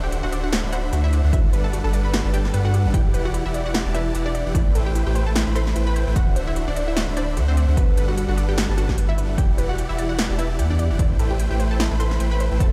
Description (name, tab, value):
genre	future bass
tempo	149 BPM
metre	4/4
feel	swing 56% on 16ths, half-time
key	G major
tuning	A4 = 439 Hz
part	unison pluck	melody	0.0-12.7 s	B3 to C6	-32 LUFS	equal	sidechain pumping, digital delay
part	supersaw chords	riff	0.0-12.7 s	D3 to B5	-30 LUFS	equal	sidechain pumping
part	saturated sub bass	bass	0.0-12.7 s	D1 to G2	-24 LUFS	equal	sidechain pumping
part	unison pluck	arpeggios	0.1-12.6 s	E4 to G5	-36 LUFS	equal	sidechain pumping, dub echo
part	big-room dance drum kit	drums	0.1-12.7 s	hi-hat, snare drum	-29 LUFS	equal	none
part	electronic kick drum	drums	1.3-12.7 s	none	-22 LUFS	equal	none
room	little or no reverb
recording	played on a big sound system in a bare room, large studio reverb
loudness	-21 LUFS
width	mono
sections	0.0-12.7 A section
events	none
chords	0.0 D7; 1.3 Gmaj7; 2.9 Em7; 4.5 Am7; 6.2 D7; 7.8 Gmaj7; 9.4 Em7; 11.0 Am7